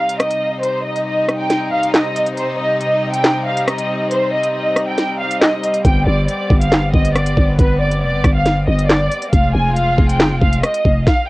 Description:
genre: hip hop, drill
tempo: 138 BPM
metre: 4/4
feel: half-time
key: C harmonic minor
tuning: A4 = 441 Hz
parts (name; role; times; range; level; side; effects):
- warm studio violin section; melody; 0.0-11.3 s; B4 to Ab5; -18 LUFS; equal; low-pass filter, tape echo
- warm chamber string section; sustained chords; 0.0-11.0 s; C3 to F4; -24 LUFS; left 2 dB; cassette tape
- drill drum kit; drums; 0.1-11.2 s; handclaps, hi-hat, kick drum, rim click, snare drum; -15 LUFS; equal; cassette tape
- growling 808-style bass; bass; 5.8-11.1 s; F1 to G1; -16 LUFS; equal; none
room: light reverb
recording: home recording on cassette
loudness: -14 LUFS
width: side -20 dB against mid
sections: 0.0-11.3 A section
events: break 0.0-5.8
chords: 0.0 Cm; 5.8 G; 9.3 Fm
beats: 0.20 | 0.63 1.07 1.50 1.94 | 2.37 2.81 3.24 3.67 | 4.11 4.54 4.98 5.42 | 5.85 6.28 6.72 7.15 | 7.59 8.02 8.46 8.89 | 9.33 9.76 10.20 10.63 | 11.07

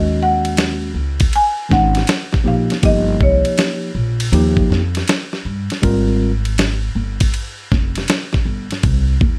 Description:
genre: hip hop, jazz-hop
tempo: 80 BPM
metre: 4/4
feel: swing 66% on 16ths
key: unclear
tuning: A4 = 443 Hz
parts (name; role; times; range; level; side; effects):
- marimba with medium hard mallets; melody; 0.0-4.7 s; Db5 to Ab5; -20 LUFS; equal; none
- tine electric piano; accompaniment; 0.0-6.3 s; Eb3 to Bb4; -20 LUFS; equal; none
- upright bass; bass; 0.0-9.4 s; F1 to G2; -21 LUFS; equal; none
- dusty soul sampler-style drum kit; drums; 0.4-9.4 s; hi-hat, kick drum, ride cymbal, snare drum; -21 LUFS; equal; none
room: light reverb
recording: none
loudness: -17 LUFS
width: mono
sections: 0.0-9.4 A section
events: none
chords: 0.0 Ebm7; 2.8 Gm7b5; 4.3 Eb; 5.8 Abmaj7; 8.8 Cm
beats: 0.58 1.33 2.08 | 2.83 3.58 4.33 5.08 | 5.83 6.58 7.33 8.08 | 8.83

